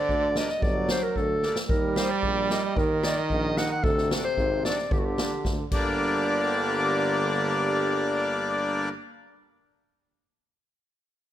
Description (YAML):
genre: klezmer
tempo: 112 BPM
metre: 2/4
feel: straight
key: G harmonic minor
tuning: A4 = 440 Hz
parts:
  - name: warm clarinet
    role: melody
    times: 0.0-8.9 s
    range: F#4 to F#5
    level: -29 LUFS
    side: left 1 dB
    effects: slapback echo
  - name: bright trombone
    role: second line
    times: 0.0-8.9 s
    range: C3 to G3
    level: -31 LUFS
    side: right 4 dB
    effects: none
  - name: warm tuba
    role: bass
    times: 0.1-8.9 s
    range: G1 to Eb2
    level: -31 LUFS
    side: equal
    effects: none
  - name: street-band drum kit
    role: drums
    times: 0.1-5.8 s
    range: crash cymbal, kick drum, snare drum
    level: -29 LUFS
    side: equal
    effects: none
  - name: accordion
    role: accompaniment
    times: 0.4-8.9 s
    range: F#3 to Eb4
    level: -27 LUFS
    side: left 1 dB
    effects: none
room: moderate recital hall reverb, RT60 1.5 s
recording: none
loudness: -23 LUFS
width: side -12 dB against mid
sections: 0.0-6.0 A section; 6.0-8.1 B section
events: drum fill 1.4, 5.4-6.0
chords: 0.0 Gm; 1.7 Eb; 3.8 D; 4.9 Gm